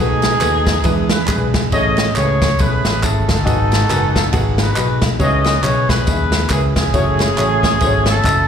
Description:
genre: uptempo gospel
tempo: 138 BPM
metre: 4/4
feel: swing 59% on 8ths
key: unclear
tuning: A4 = 441 Hz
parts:
  - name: mellow horn section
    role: melody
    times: 0.0-8.5 s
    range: C#4 to D#5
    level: -19 LUFS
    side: equal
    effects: slapback echo
  - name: warm baby grand piano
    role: accompaniment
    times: 0.0-8.5 s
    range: G#2 to G#5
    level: -21 LUFS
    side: left 1 dB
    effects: slapback echo
  - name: fingered electric bass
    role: bass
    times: 0.0-8.5 s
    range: F1 to E2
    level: -18 LUFS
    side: equal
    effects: none
  - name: swinging big-band drum kit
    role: drums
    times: 0.2-8.4 s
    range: kick drum, ride cymbal, snare drum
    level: -18 LUFS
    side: equal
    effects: none
  - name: tambourine and handclaps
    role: percussion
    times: 0.2-8.4 s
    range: none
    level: -28 LUFS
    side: right 2 dB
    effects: slapback echo
room: small room ambience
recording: live gig heard through the venue's PA, club reverb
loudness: -13 LUFS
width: side -8 dB against mid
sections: 0.0-8.5 A section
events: none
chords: 0.0 B7; 0.8 E7; 1.7 Amaj7; 3.5 G#m7; 5.2 C#m7; 6.9 F#m7

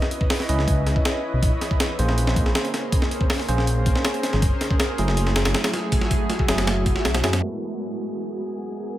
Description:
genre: drum and bass, jungle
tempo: 160 BPM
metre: 4/4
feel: straight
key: unclear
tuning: A4 = 440 Hz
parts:
  - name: granular cloud pad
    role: sustained chords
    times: 0.0-9.0 s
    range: B3 to A#4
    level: -29 LUFS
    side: equal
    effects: built-in reverb
  - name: overdriven tine electric piano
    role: stabs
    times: 0.0-9.0 s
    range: F#3 to D#5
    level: -28 LUFS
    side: right 2 dB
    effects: fast tremolo, low-pass filter, dub echo
  - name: breakbeat sampler-style drum kit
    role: drums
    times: 0.0-7.4 s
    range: hi-hat, kick drum, snare drum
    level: -22 LUFS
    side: equal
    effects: studio ambience
  - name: dark detuned saw bass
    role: bass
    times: 0.5-7.4 s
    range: F#1 to F#2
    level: -22 LUFS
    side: equal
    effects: none
  - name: wind-like tuned noise texture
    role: texture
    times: 7.8-9.0 s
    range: G#4 to G#5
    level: -41 LUFS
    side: right 4 dB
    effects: built-in reverb
room: light reverb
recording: low-pass filter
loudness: -20 LUFS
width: side -14 dB against mid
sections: 0.0-7.4 A section; 7.4-9.0 B section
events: filter sweep 7.4-9.0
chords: 0.0 C#m9; 1.4 A#m9; 4.4 F#m9; 7.4 G#m9

